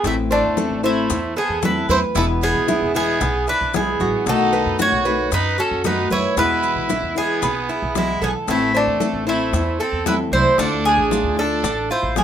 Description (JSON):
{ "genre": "latin, Cuban son and guajira", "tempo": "114 BPM", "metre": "4/4", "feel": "straight", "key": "A harmonic minor", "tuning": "A4 = 440 Hz", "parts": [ { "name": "Cuban tres", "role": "melody", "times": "0.0-12.2 s", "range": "D4 to C#5", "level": "-20 LUFS", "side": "right 1 dB", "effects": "none" }, { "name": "growling trumpet", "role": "second line", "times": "0.0-12.2 s", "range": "G#3 to F#4", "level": "-26 LUFS", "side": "right 5 dB", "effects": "none" }, { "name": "flamenco guitar", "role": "accompaniment", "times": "0.0-12.2 s", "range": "B2 to F#4", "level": "-23 LUFS", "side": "left 5 dB", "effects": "none" }, { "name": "upright bass", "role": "bass", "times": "0.0-12.2 s", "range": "E1 to F#2", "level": "-26 LUFS", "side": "equal", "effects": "none" }, { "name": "bongos", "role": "percussion", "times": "0.0-12.2 s", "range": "none", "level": "-29 LUFS", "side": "left 6 dB", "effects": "none" }, { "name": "congas", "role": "percussion", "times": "0.0-12.2 s", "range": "none", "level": "-28 LUFS", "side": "right 2 dB", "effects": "none" }, { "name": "maracas", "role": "percussion", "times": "0.0-12.2 s", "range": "none", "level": "-34 LUFS", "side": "left 8 dB", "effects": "none" }, { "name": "Cuban tres", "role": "arpeggios", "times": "0.3-12.2 s", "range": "B3 to D5", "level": "-26 LUFS", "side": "right 2 dB", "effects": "none" } ], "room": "moderate studio ambience, RT60 0.5 s", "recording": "minimal, uncompressed stereo recording", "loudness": "-17 LUFS", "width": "side -9 dB against mid", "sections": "0.0-12.2 A section", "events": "none", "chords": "0.0 Am; 2.2 E; 4.3 B7; 6.4 E; 8.5 Am; 10.6 Dm" }